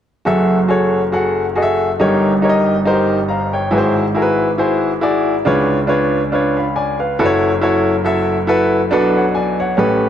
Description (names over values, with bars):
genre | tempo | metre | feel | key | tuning
gospel | 139 BPM | 4/4 | swing 55% on 8ths | F# minor | A4 = 439 Hz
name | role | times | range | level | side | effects
clear baby grand piano | solo | 0.3-10.1 s | F#1 to B5 | -13 LUFS | equal | tape echo
room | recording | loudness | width
moderate concert hall reverb, RT60 2.1 s | dark, warm production | -13 LUFS | side -10 dB against mid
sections
0.3-7.2 A section; 7.2-10.1 B section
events
none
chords
0.3 F#m9; 2.0 D#7/G; 3.7 G#7alt; 5.5 C#7b9; 7.2 F#m7; 8.9 Bm7